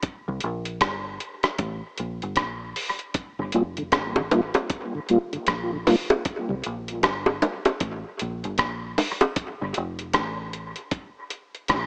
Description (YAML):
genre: dub reggae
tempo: 77 BPM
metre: 4/4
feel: swing 60% on 16ths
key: G minor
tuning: A4 = 440 Hz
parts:
  - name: dusty soul sampler-style drum kit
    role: drums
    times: 0.0-11.9 s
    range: hi-hat, kick drum, rim click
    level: -29 LUFS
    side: equal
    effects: dub echo
  - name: deep dub fingered electric bass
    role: bass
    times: 0.3-11.9 s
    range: F1 to C2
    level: -35 LUFS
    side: equal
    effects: none
  - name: mellow tonewheel organ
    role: accompaniment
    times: 3.4-6.5 s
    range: G2 to F4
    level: -28 LUFS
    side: equal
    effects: chorus vibrato, stopped rotary speaker, dub echo
  - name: bongos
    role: percussion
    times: 3.9-9.4 s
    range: none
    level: -27 LUFS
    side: equal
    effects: tape echo
room: moderate plate reverb, RT60 2.3 s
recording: small speaker sound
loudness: -26 LUFS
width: mono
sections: 0.0-11.9 A section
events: break 0.0-3.1, 9.4-11.9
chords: 0.0 N.C.; 3.1 Gm7; 6.3 N.C.